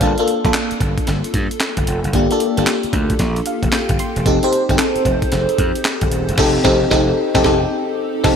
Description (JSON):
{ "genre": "R&B, new jack swing", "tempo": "113 BPM", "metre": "4/4", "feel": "swing 64% on 16ths", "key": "G minor", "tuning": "A4 = 440 Hz", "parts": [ { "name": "FM electric piano with soft pad layer", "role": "accompaniment", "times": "0.0-8.4 s", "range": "Bb3 to C6", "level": "-17 LUFS", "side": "left 1 dB", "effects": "chorus, phaser" }, { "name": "gritty slap bass", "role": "bass", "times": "0.0-8.4 s", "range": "Eb1 to G2", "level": "-20 LUFS", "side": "equal", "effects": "overdrive" }, { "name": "breakbeat sampler-style drum kit", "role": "drums", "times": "0.0-8.4 s", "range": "crash cymbal, handclaps, hi-hat, kick drum, snare drum", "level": "-20 LUFS", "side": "equal", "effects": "none" } ], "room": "moderate plate reverb, RT60 2.7 s", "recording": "bright 1980s-style digital production", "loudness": "-15 LUFS", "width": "side -7 dB against mid", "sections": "0.0-8.4 A section", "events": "FM electric piano fill 3.2-4.3; band accent 6.4-8.4", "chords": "0.0 Gm7; 4.3 F9", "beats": "| 0.01 0.54 1.07 1.60 | 2.13 2.67 3.20 3.73 | 4.26 4.79 5.32 5.85 | 6.38 6.91 7.45 7.98" }